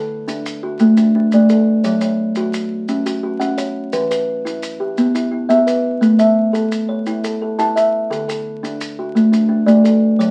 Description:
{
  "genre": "southern african traditional, mbira-style interlocking cycle",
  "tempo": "115 BPM (dotted quarters)",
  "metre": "12/8",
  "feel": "straight",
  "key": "unclear",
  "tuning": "A4 = 440 Hz",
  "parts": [
    { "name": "kalimba", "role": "arpeggios", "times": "0.0-10.3 s", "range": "D3 to A5", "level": "-16 LUFS", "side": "equal", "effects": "none" },
    { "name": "maracas", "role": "percussion", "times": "0.3-10.3 s", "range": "none", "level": "-34 LUFS", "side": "equal", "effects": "none" }
  ],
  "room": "moderate studio reverb, RT60 0.5 s",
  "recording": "very old 78 rpm record, vinyl crackle",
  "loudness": "-16 LUFS",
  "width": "mono",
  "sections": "0.0-10.3 A section",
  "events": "none",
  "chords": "0.0 D; 1.8 F#5; 3.9 Em; 6.0 A; 8.1 D"
}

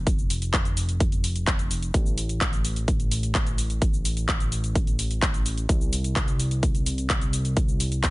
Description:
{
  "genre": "EDM, festival progressive house",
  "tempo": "128 BPM",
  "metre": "4/4",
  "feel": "straight",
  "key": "unclear",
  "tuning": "A4 = 440 Hz",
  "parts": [
    { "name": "fat analog bass", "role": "bass", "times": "0.0-8.1 s", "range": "F1 to C2", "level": "-27 LUFS", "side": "equal", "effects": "tube saturation, sidechain pumping" },
    { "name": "big-room dance drum kit", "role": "drums", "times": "0.1-8.1 s", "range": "handclaps, hi-hat, shaker", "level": "-29 LUFS", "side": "left 1 dB", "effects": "overdrive" },
    { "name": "electronic kick drum", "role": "drums", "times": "0.1-8.1 s", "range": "none", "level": "-24 LUFS", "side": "equal", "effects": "overdrive" }
  ],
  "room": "little or no reverb",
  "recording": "nothing above 10.4 kHz",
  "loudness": "-22 LUFS",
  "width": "side -20 dB against mid",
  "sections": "0.0-8.1 A section",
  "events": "none",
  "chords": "none"
}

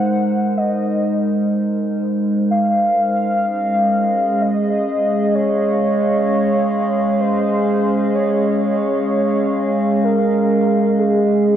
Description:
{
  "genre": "ambient",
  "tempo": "free time",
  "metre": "none",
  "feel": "none",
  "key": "unclear",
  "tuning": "A4 = 436 Hz",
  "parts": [
    { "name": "warm velvety synth lead", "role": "melody", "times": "0.0-11.6 s", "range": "Ab4 to Gb5", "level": "-20 LUFS", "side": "equal", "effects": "chorus, cassette tape, tape echo" },
    { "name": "warbly tape-like pad", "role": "sustained chords", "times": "0.0-11.6 s", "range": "Ab3 to F5", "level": "-17 LUFS", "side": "equal", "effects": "chorus, built-in reverb, cassette tape" }
  ],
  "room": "wet spring reverb, RT60 1.7 s, digital ambience",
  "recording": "home recording on cassette",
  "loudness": "-15 LUFS",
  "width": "side -10 dB against mid",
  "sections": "0.0-11.6 A section",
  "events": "none",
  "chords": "0.0 Ab7; 2.5 Db/Ab"
}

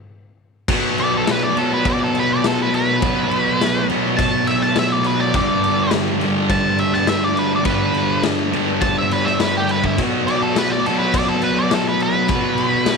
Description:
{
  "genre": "garage rock duo or trio",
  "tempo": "103 BPM",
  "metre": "4/4",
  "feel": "straight",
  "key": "unclear",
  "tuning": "A4 = 437 Hz",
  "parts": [
    { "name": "thick fuzz guitar", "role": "riff", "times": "0.7-13.0 s", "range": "G2 to B3", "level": "-18 LUFS", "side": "right 1 dB", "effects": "distortion" },
    { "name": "raw garage drum kit", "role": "drums", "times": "0.7-13.0 s", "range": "crash cymbal, kick drum, snare drum", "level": "-23 LUFS", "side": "left 4 dB", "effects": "none" },
    { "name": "octave-fuzz lead guitar", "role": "melody", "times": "1.0-13.0 s", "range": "E4 to A5", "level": "-21 LUFS", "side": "right 1 dB", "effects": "distortion" }
  ],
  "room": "small room ambience",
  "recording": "1960s-style stereo",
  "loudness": "-16 LUFS",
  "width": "side -4 dB against mid",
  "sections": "0.7-13.0 A section",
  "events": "stop 0.0-0.7",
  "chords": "0.0 N.C.; 0.7 B5; 5.3 G; 10.0 B5"
}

